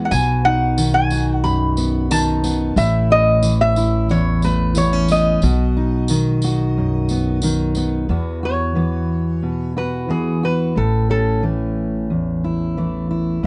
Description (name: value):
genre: acoustic folk duo or small band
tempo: 90 BPM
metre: 4/4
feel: straight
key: unclear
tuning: A4 = 443 Hz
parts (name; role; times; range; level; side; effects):
- lap resonator guitar; melody; 0.0-11.4 s; G#4 to B5; -22 LUFS; equal; none
- fingerpicked steel-string acoustic guitar; accompaniment; 0.0-13.5 s; E2 to F#4; -22 LUFS; equal; none
- upright bass; bass; 0.0-13.5 s; A1 to E2; -23 LUFS; equal; none
- tambourine; percussion; 0.1-7.9 s; none; -33 LUFS; equal; none
room: light reverb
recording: dark, warm production, nothing above 10.7 kHz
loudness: -18 LUFS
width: mono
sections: 0.0-8.1 A section; 8.1-13.5 B section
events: resonator guitar played with a steel bar solo 8.1-13.5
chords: 0.1 B; 2.8 A; 5.4 B; 8.1 Esus2; 10.8 A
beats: | 0.11 0.77 1.44 2.10 | 2.77 3.43 4.10 4.76 | 5.43 6.09 6.76 7.43 | 8.09 8.76 9.43 10.10 | 10.76 11.43 12.10 12.76 | 13.43